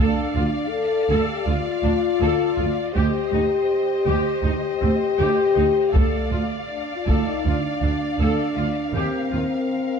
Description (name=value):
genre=cinematic, epic orchestral film score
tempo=80 BPM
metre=4/4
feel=straight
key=D phrygian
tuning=A4 = 442 Hz
part: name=warm symphonic violin section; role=melody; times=0.0-10.0 s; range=Eb5 to F5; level=-33 LUFS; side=left 5 dB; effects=none
part: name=rich symphonic violin section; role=second line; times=0.0-10.0 s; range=Bb4 to D5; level=-32 LUFS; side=left 2 dB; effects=none
part: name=clear symphonic viola section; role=accompaniment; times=0.0-9.4 s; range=C4 to A4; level=-30 LUFS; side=right 2 dB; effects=none
part: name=mellow French horn section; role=sustained chords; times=0.0-10.0 s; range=A3 to A4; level=-22 LUFS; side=left 4 dB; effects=none
part: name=rich symphonic cello section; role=bass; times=0.0-9.4 s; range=D2 to Eb2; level=-27 LUFS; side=right 5 dB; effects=none
part: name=rich symphonic double bass section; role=bass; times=0.0-9.4 s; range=D2 to Eb2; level=-26 LUFS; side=right 3 dB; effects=none
part: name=taiko ensemble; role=drums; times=6.0-7.4 s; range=none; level=-23 LUFS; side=left 1 dB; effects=none
room=moderate scoring stage reverb, RT60 1.7 s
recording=dark, warm production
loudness=-19 LUFS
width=side -6 dB against mid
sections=0.0-10.0 A section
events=none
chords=0.0 Dm; 3.0 Cm/D; 5.9 Dm; 8.9 Ebadd9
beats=0.72 1.47 2.21 | 2.95 3.70 4.45 5.19 | 5.95 6.70 7.45 8.20 | 8.95 9.71